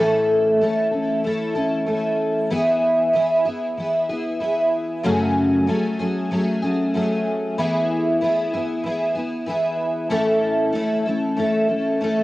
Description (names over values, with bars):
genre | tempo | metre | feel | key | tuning
rock | 95 BPM | 4/4 | straight | A major | A4 = 440 Hz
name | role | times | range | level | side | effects
picked twelve-string acoustic guitar | solo | 0.0-12.2 s | F#2 to A4 | -18 LUFS | equal | analog chorus, cassette tape
room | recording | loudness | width
light reverb, studio ambience | home recording on cassette | -18 LUFS | side -18 dB against mid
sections
0.0-12.2 A section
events
none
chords
0.0 A; 2.5 E; 5.0 F#madd9; 7.6 E; 10.1 A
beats
0.61 1.24 1.88 | 2.51 3.15 3.78 4.41 | 5.05 5.68 6.32 6.95 | 7.58 8.22 8.85 9.48 | 10.12 10.75 11.38 12.01